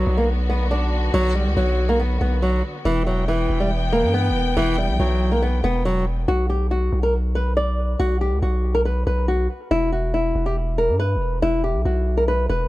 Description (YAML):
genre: hip hop, trap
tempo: 140 BPM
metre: 4/4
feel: half-time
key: B harmonic minor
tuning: A4 = 440 Hz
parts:
  - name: flamenco guitar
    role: melody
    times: 0.0-12.7 s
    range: E3 to D5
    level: -22 LUFS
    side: equal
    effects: analog delay
  - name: warm symphonic string section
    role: sustained chords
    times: 0.0-6.2 s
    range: D3 to G5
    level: -29 LUFS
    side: left 2 dB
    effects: none
  - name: long sustained 808-style bass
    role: bass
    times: 0.0-12.7 s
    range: E1 to G2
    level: -21 LUFS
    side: equal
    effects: none
room: small room ambience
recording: dry, gritty hardware recording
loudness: -18 LUFS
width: side -17 dB against mid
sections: 0.0-6.3 A section; 6.3-12.7 B section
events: none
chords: 0.0 Bm; 2.9 Em; 6.3 B5; 9.7 E5